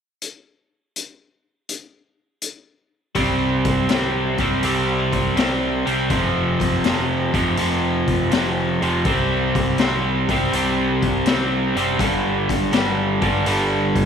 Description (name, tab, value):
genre	blues rock power trio and southern rock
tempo	82 BPM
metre	4/4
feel	swing 68% on 8ths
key	unclear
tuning	A4 = 438 Hz
part	raw garage drum kit	drums	0.2-14.1 s	hi-hat, kick drum, snare drum	-24 LUFS	left 3 dB	none
part	crunchy overdriven guitar	riff	3.2-14.1 s	F2 to C4	-19 LUFS	right 1 dB	none
part	growling picked electric bass	bass	3.2-14.1 s	F1 to C2	-28 LUFS	right 1 dB	overdrive
room	moderate spring reverb, RT60 2.4 s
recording	1960s-style stereo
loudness	-17 LUFS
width	side -7 dB against mid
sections	0.2-3.2 A section; 3.2-14.1 B section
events	none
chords	0.2 N.C.; 3.2 C5; 6.1 F5; 9.0 C5; 12.0 G5